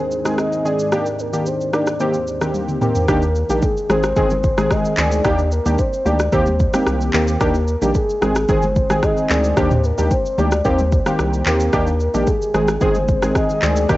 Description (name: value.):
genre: afrobeats.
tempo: 111 BPM.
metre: 4/4.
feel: straight.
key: Eb major.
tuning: A4 = 444 Hz.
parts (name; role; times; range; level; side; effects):
soft octave-layered synth lead; melody; 0.0-14.0 s; Ab4 to Eb5; -22 LUFS; left 1 dB; chorus, tremolo, cassette tape, analog delay.
deep dark ambient pad; sustained chords; 0.0-3.1, 12.1-14.0 s; Eb3 to D4; -30 LUFS; left 1 dB; chorus, built-in reverb.
afro-pop drum kit; drums; 0.1-14.0 s; handclaps, kick drum, rim click, shaker, toms; -21 LUFS; equal; cassette tape.
warm analog keys; accompaniment; 0.2-14.0 s; Eb3 to Ab4; -20 LUFS; equal; chorus.
round analog bass; bass; 3.1-14.0 s; G1 to Eb2; -21 LUFS; equal; none.
congas; percussion; 3.5-13.8 s; none; -30 LUFS; left 2 dB; none.
room: light reverb.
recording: home recording on cassette, nothing above 7.8 kHz.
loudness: -15 LUFS.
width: side -17 dB against mid.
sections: 0.0-3.1 A section; 3.1-14.0 B section.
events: drum fill 2.5-3.1.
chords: 0.0 Ab; 0.9 Ebmaj7; 2.0 Cm7/Eb; 3.1 Ebmaj7; 3.9 Ab; 5.2 Ebmaj7; 6.3 Cm7/Eb; 7.4 Ebmaj7; 8.2 Ab; 9.6 Ebmaj7; 10.7 Cm7/Eb; 11.7 Ebmaj7; 12.5 Ab.